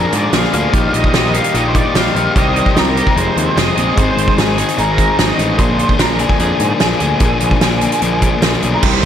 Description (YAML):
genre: indie rock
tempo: 148 BPM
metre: 4/4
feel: straight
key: unclear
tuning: A4 = 440 Hz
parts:
  - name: octave-fuzz lead guitar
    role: melody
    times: 0.0-9.1 s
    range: Ab4 to F5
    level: -18 LUFS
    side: right 2 dB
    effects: distortion, slapback echo
  - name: overdriven electric guitar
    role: riff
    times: 0.0-9.1 s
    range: F2 to Ab4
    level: -17 LUFS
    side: left 4 dB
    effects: slapback echo
  - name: fuzz picked electric bass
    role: bass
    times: 0.0-9.1 s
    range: F1 to Ab2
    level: -18 LUFS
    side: equal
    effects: overdrive
  - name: loose indie drum kit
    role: drums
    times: 0.1-9.1 s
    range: crash cymbal, hi-hat, kick drum, snare drum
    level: -16 LUFS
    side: right 1 dB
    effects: none
  - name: biting overdriven guitar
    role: riff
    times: 8.8-9.1 s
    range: C3 to G4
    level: -18 LUFS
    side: right 13 dB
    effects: analog chorus
room: moderate lush hall reverb, RT60 2.0 s, studio ambience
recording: big arena sound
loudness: -11 LUFS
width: side -9 dB against mid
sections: 0.0-8.8 A section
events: none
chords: 0.0 Bb7; 0.7 Eb/Bb; 2.4 Cm; 3.2 Fm7; 4.0 Ab; 5.6 Bb7